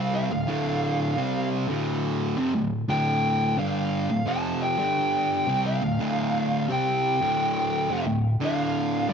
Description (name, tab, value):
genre	metal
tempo	87 BPM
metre	4/4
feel	straight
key	D minor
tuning	A4 = 438 Hz
part	fuzz lead guitar	melody	0.0-9.1 s	D5 to A5	-27 LUFS	equal	distortion, analog delay
part	fuzz guitar	riff	0.0-9.1 s	D2 to C4	-24 LUFS	equal	distortion
room	light reverb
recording	dark, warm production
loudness	-23 LUFS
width	side -6 dB against mid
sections	0.0-9.1 A section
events	none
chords	0.0 Dm; 4.8 G5; 5.5 Dm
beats	| 0.13 0.82 1.51 2.20 | 2.89 3.58 4.27 4.96 | 5.64 6.33 7.02 7.71 | 8.40 9.09